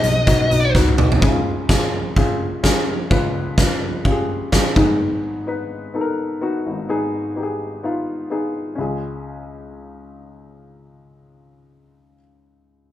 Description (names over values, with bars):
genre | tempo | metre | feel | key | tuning
piano-driven pop | 127 BPM | 4/4 | swing 56% on 16ths | unclear | A4 = 440 Hz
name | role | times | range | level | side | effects
fuzz lead guitar | melody | 0.0-0.7 s | Eb5 | -19 LUFS | left 1 dB | distortion
warm upright piano | accompaniment | 0.0-12.9 s | Ab1 to Cb5 | -22 LUFS | left 2 dB | none
vintage muted picked electric bass | bass | 0.0-1.2 s | Cb2 to Db2 | -19 LUFS | equal | none
huge arena drum kit | drums | 0.0-4.9 s | hi-hat, kick drum, snare drum, toms | -18 LUFS | right 1 dB | none
room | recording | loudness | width
moderate large studio reverb, RT60 0.8 s | band playing live in one room | -17 LUFS | side -12 dB against mid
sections
0.0-1.2 A section; 1.2-8.8 B section; 8.8-12.6 C section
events
drum fill 0.7-1.2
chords
0.0 Cb; 1.2 Db; 4.8 Abm; 8.8 Db